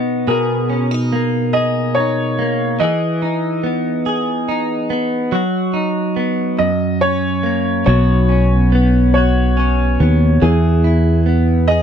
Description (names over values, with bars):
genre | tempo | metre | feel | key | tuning
six-eight pop ballad | 47 BPM (dotted quarters) | 6/8 | straight | B major | A4 = 440 Hz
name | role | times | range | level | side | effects
clear concert grand piano | melody | 0.0-11.8 s | G#4 to D#5 | -21 LUFS | equal | none
direct-recorded clean electric guitar | accompaniment | 0.0-11.8 s | F#2 to G#4 | -17 LUFS | equal | double-tracked left and right
fretless electric bass | bass | 7.9-11.8 s | B1 to E2 | -13 LUFS | equal | ensemble chorus
room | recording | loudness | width
light reverb | dry, close 1970s-style studio recording | -14 LUFS | side -8 dB against mid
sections
0.0-11.8 A section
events
none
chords
0.3 G#madd9/B; 2.8 Emaj7; 5.3 B/F#; 6.6 F#; 7.9 Bsus2; 10.4 E